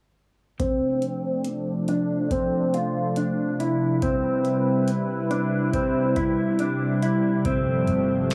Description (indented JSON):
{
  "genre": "dream pop",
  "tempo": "70 BPM",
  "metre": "4/4",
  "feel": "straight",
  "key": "D dorian",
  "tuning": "A4 = 440 Hz",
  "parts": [
    { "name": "warm analog pad", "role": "sustained chords", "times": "0.6-8.3 s", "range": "C3 to B4", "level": "-27 LUFS", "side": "equal", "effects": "chorus, low-pass filter" },
    { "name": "mellow electric guitar", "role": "arpeggios", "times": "0.6-8.3 s", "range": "C4 to F4", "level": "-27 LUFS", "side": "equal", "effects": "analog chorus, low-pass filter, digital delay" },
    { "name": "booming analog drum machine", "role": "drums", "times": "0.6-8.3 s", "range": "hi-hat, kick drum, snare drum", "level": "-32 LUFS", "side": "equal", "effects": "none" },
    { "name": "vintage muted fingered electric bass", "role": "bass", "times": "7.5-8.3 s", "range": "G1", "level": "-32 LUFS", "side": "equal", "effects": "none" }
  ],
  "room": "moderate huge ambient reverb, RT60 8.1 s",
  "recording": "small room ambience",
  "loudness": "-24 LUFS",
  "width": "mono",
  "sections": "0.6-8.3 A section",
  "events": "filter sweep 0.6-8.3",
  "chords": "0.6 Dm7; 4.0 Cmaj7; 7.5 G9sus4"
}